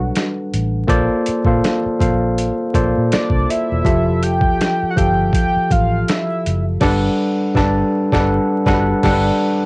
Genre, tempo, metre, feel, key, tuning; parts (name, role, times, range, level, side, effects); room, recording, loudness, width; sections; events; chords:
R&B, neo-soul; 81 BPM; 4/4; swing 55% on 16ths; A4 = 439 Hz
fat analog lead; melody; 0.0-6.7 s; F#4 to G5; -20 LUFS; equal; chorus, cassette tape
tine electric piano; accompaniment; 0.0-9.7 s; F3 to A5; -17 LUFS; equal; cassette tape
vintage muted fingered electric bass; bass; 0.0-9.3 s; E1 to Bb2; -20 LUFS; equal; tube saturation
boom bap sampler-style drum kit; drums; 0.2-9.3 s; crash cymbal, hi-hat, kick drum, snare drum; -19 LUFS; equal; cassette tape
archtop guitar, miked and amplified; second line; 6.8-9.3 s; D4 to D5; -25 LUFS; right 3 dB; cassette tape
light reverb; home recording on cassette, vinyl crackle, nothing above 11.0 kHz; -14 LUFS; side -27 dB against mid
0.0-9.7 A section
band accent 6.8-9.7
0.0 Gmaj9; 0.9 Bbmaj9; 3.8 Fmaj9; 6.8 Gmaj9